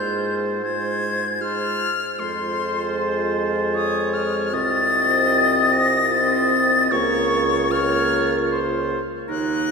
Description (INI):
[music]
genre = classical, slow romantic movement for wind quintet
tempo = 76 BPM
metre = 3/4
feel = rubato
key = F minor, Bb minor from 4.5 s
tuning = A4 = 440 Hz
[part]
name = silver concert flute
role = melody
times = 0.0-9.7 s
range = C6 to Bb6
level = -22 LUFS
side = left 4 dB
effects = none
[part]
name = clear oboe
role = second line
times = 0.0-9.7 s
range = Bb4 to Eb5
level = -26 LUFS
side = left 1 dB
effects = none
[part]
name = dark French horn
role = accompaniment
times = 0.0-9.7 s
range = Ab3 to C4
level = -26 LUFS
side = equal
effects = none
[part]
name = mellow clarinet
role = accompaniment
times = 0.0-9.7 s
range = Eb4 to F4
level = -28 LUFS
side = right 4 dB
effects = none
[part]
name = mellow bassoon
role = bass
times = 0.0-9.7 s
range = C2 to Ab2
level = -26 LUFS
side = right 2 dB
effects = none
[sound]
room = wet cathedral reverb, RT60 4.7 s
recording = recorded in a church or concert hall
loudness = -18 LUFS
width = side -5 dB against mid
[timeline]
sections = 0.0-9.7 A section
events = none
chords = 0.0 Fm/Ab; 2.2 Fm; 4.5 F7/C; 6.9 Bbm/Db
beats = 0.63 1.42 | 2.20 2.97 3.75 | 4.53 5.31 6.11 | 6.92 7.71 8.51 | 9.29